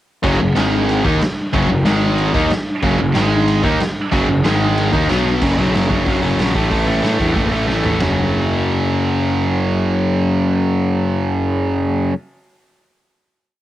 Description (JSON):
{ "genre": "punk rock", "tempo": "185 BPM", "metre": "4/4", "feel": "straight", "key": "unclear", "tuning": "A4 = 440 Hz", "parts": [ { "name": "distorted electric guitar", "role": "riff", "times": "0.2-5.4 s", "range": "F#2 to D#4", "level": "-23 LUFS", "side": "equal", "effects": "overdrive, cassette tape" }, { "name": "sludgy distorted guitar", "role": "riff", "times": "0.2-12.1 s", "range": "F#2 to D#4", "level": "-19 LUFS", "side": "left 4 dB", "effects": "overdrive, cassette tape" }, { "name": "tight distorted guitar", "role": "riff", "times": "0.2-12.1 s", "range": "F#2 to D#4", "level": "-21 LUFS", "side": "right 6 dB", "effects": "distortion, cassette tape" }, { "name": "fuzz picked electric bass", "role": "bass", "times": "0.2-12.1 s", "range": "F#1 to A2", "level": "-20 LUFS", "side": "equal", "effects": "overdrive" }, { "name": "raw garage drum kit", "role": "drums", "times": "0.2-8.1 s", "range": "crash cymbal, hi-hat, kick drum, ride cymbal, snare drum, toms", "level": "-22 LUFS", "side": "equal", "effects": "cassette tape" } ], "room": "small room ambience", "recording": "home recording on cassette", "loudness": "-14 LUFS", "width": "side -13 dB against mid", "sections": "0.2-5.4 riff; 5.4-8.0 outro; 8.0-10.6 final chord", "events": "drum fill 7.7-8.0", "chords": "0.2 F#5; 0.6 G#5; 1.0 F#; 1.9 G#5; 2.3 F#; 3.2 G#5; 3.6 F#; 4.4 G#5; 4.9 D#5; 5.1 B5; 5.4 F#; 6.5 A5; 8.0 F#5" }